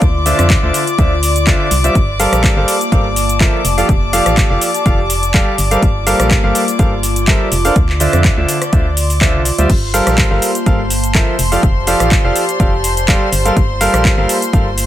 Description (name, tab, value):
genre	piano house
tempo	124 BPM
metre	4/4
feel	swing 54% on 16ths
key	G dorian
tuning	A4 = 437 Hz
part	warm studio violin section	sustained chords	0.0-14.9 s	C5 to D6	-21 LUFS	left 2 dB	sidechain pumping
part	organ-like FM bass	bass	0.0-14.9 s	F1 to F2	-17 LUFS	equal	sidechain pumping
part	electronic kick drum	drums	0.0-14.6 s	none	-13 LUFS	equal	none
part	house drum kit	drums	0.0-14.9 s	crash cymbal, handclaps, hi-hat, rim click, shaker	-18 LUFS	equal	overdrive
part	warbly tape-like pad	texture	0.0-14.9 s	Bb3 to C6	-24 LUFS	left 1 dB	chorus, built-in reverb, sidechain pumping
part	clear concert grand piano	riff	0.3-14.7 s	D3 to F5	-17 LUFS	right 1 dB	sidechain pumping, digital delay
room	little or no reverb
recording	none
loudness	-11 LUFS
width	side -12 dB against mid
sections	0.0-14.9 A section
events	none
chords	0.0 Dm9; 2.0 Gm11; 3.6 F69; 5.6 Gm11; 7.8 Dm9; 9.7 Gm11; 11.4 F69; 13.3 Gm11